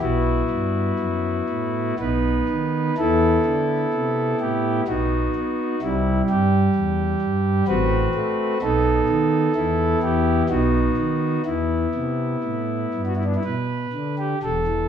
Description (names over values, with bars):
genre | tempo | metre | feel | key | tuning
classical, chorale-style piece for pipe organ | 63 BPM | 3/4 | rubato | E minor | A4 = 437 Hz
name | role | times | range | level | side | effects
pipe organ, principal | solo | 0.0-14.9 s | E1 to B4 | -19 LUFS | equal | none
room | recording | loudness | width
wet stone room reverb, RT60 1.0 s | heard from further back in the room | -19 LUFS | side -8 dB against mid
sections
0.0-14.4 A section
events
none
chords
0.0 Bsus4; 2.0 B; 3.0 E5; 4.9 B; 5.8 C; 7.7 F#dim/A; 8.6 B7; 9.5 Em; 10.5 B; 11.4 Em